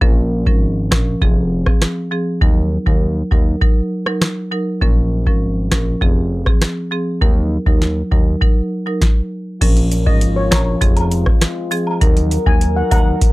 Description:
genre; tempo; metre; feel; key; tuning
dancehall; 100 BPM; 4/4; straight; Bb minor; A4 = 438 Hz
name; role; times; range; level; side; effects
marimba with hard mallets; accompaniment; 0.0-13.1 s; F3 to Bb4; -20 LUFS; right 1 dB; sidechain pumping
fat analog bass; bass; 0.0-13.2 s; F1 to Eb2; -19 LUFS; equal; none
booming analog drum machine; drums; 0.0-13.3 s; crash cymbal, hi-hat, kick drum, rim click, snare drum; -13 LUFS; equal; none
mellow brass ensemble; sustained chords; 9.6-13.3 s; Eb3 to Bb4; -25 LUFS; left 4 dB; stereo widening, sidechain pumping
cabasa and woodblock; percussion; 9.9-13.1 s; none; -27 LUFS; equal; none
steel pan; melody; 10.1-13.0 s; Db5 to Ab5; -23 LUFS; left 2 dB; analog delay
room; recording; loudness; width
little or no reverb; dry, gritty hardware recording; -14 LUFS; side -20 dB against mid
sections
0.0-9.6 A section; 9.6-13.3 B section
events
none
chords
0.0 Bbm; 1.2 Fm; 2.4 Ebm; 4.8 Bbm; 6.0 Fm; 7.2 Ebm; 9.6 Bbm; 10.8 Fm; 12.0 Ebm

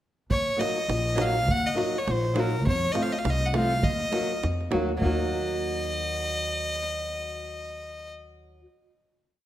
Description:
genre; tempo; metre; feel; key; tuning
balkan folk, Balkan wedding band; 102 BPM; 2/4; swing 55% on 16ths; Eb minor; A4 = 436 Hz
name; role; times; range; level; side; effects
bright fiddle; melody; 0.3-8.1 s; Bb4 to Gb5; -28 LUFS; equal; none
upright bass; bass; 0.3-8.6 s; Bb1 to F2; -30 LUFS; equal; none
davul; percussion; 0.3-5.3 s; none; -32 LUFS; right 2 dB; none
flamenco guitar; accompaniment; 0.6-8.7 s; F3 to Gb4; -30 LUFS; equal; none
room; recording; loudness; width
moderate recital hall reverb, RT60 1.6 s; none; -24 LUFS; side -12 dB against mid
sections
0.3-5.0 A section; 5.0-7.4 final chord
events
none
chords
0.3 Ebm; 2.7 F; 3.8 Ebm

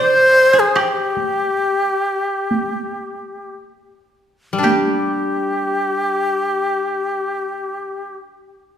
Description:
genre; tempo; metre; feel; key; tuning
japanese traditional, Japanese chamber music; 53-78 BPM; 4/4; rubato; G in sen; A4 = 440 Hz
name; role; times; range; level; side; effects
breathy bright long shakuhachi; melody; 0.0-8.2 s; G4 to C5; -17 LUFS; left 1 dB; none
koto; second line; 0.0-8.2 s; C4 to D5; -24 LUFS; right 3 dB; none
taiko ensemble; percussion; 0.8-5.2 s; none; -24 LUFS; right 2 dB; none
koto; accompaniment; 4.5-8.2 s; G3 to G4; -22 LUFS; equal; none
room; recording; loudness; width
wet scoring stage reverb, RT60 1.7 s; recorded in a church or concert hall; -16 LUFS; side -9 dB against mid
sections
0.0-4.6 A section; 4.6-8.8 B section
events
slowing down 0.0-4.6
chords
none

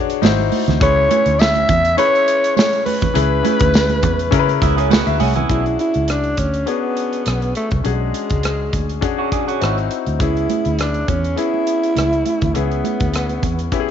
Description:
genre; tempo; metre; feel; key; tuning
lush 1970s-style soul; 102 BPM; 4/4; swing 54% on 16ths; B dorian; A4 = 441 Hz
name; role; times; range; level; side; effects
bright concert grand piano; accompaniment; 0.0-13.9 s; B3 to G#5; -22 LUFS; left 13 dB; none
modern studio drum kit; drums; 0.1-13.9 s; hi-hat, kick drum, rim click, snare drum; -21 LUFS; right 1 dB; none
vintage muted fingered electric bass; bass; 0.2-13.7 s; G#1 to C#3; -20 LUFS; equal; none
congas; percussion; 0.2-5.5, 10.5-13.6 s; none; -24 LUFS; right 13 dB; none
tambourine; percussion; 0.2-5.1 s; none; -34 LUFS; left 14 dB; none
breathy alto saxophone; melody; 0.8-13.7 s; G#3 to E5; -18 LUFS; right 1 dB; slapback echo
electric guitar through a small old amp; riff; 4.6-5.6, 9.2-9.8 s; B3 to B4; -22 LUFS; right 14 dB; none
room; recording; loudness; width
light reverb, studio reverb; 1960s-style stereo with parts hard left and right, nothing above 7.6 kHz; -15 LUFS; side -9 dB against mid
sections
0.0-5.5 A section; 5.5-13.9 B section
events
none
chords
0.2 G#7b13; 0.8 C#m7; 5.5 Bm69; 9.6 G#7b13; 10.2 C#m7

